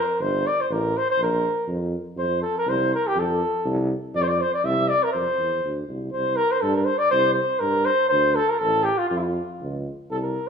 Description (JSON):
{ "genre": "balkan folk", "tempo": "121 BPM", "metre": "2/4", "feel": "swing 54% on 16ths", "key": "F major", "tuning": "A4 = 441 Hz", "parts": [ { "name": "mellow flugelhorn", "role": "melody", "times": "0.0-10.5 s", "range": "E4 to E5", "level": "-21 LUFS", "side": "equal", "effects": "none" }, { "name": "warm tuba", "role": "bass", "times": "0.2-10.4 s", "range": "G1 to G2", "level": "-27 LUFS", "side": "right 1 dB", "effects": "none" } ], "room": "moderate recital hall reverb, RT60 1.4 s", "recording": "minimal, uncompressed stereo recording", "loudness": "-20 LUFS", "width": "side -6 dB against mid", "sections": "0.0-2.2 A section; 2.2-10.1 B section", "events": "none", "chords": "0.2 Gmadd11; 1.2 Bb5; 2.2 F; 6.1 C5; 8.1 D5; 9.1 Db", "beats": "| 0.19 0.68 | 1.18 1.67 | 2.17 2.66 | 3.15 3.65 | 4.15 4.64 | 5.14 5.63 | 6.13 6.63 | 7.12 7.62 | 8.12 8.62 | 9.11 9.61 | 10.11" }